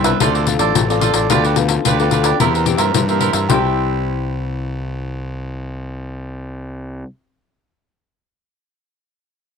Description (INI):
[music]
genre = samba and choro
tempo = 109 BPM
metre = 4/4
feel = straight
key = C major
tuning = A4 = 440 Hz
[part]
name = cavaquinho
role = accompaniment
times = 0.0-7.1 s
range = E4 to E5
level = -19 LUFS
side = right 10 dB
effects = none
[part]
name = nylon-string guitar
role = accompaniment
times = 0.0-7.1 s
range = G2 to A4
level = -22 LUFS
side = left 10 dB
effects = none
[part]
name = fuzz fingered electric bass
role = bass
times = 0.0-7.0 s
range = A1 to G2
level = -21 LUFS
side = equal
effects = overdrive
[part]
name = pandeiro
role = percussion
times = 0.0-3.6 s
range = none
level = -19 LUFS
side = left 8 dB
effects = none
[sound]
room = wet spring reverb, RT60 1.2 s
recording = 1960s-style stereo with parts hard left and right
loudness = -14 LUFS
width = side -6 dB against mid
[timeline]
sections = 0.0-3.5 A section; 3.5-7.9 B section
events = none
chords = 0.2 Dm7; 1.3 G9/D; 2.4 C7/E; 3.5 Cmaj7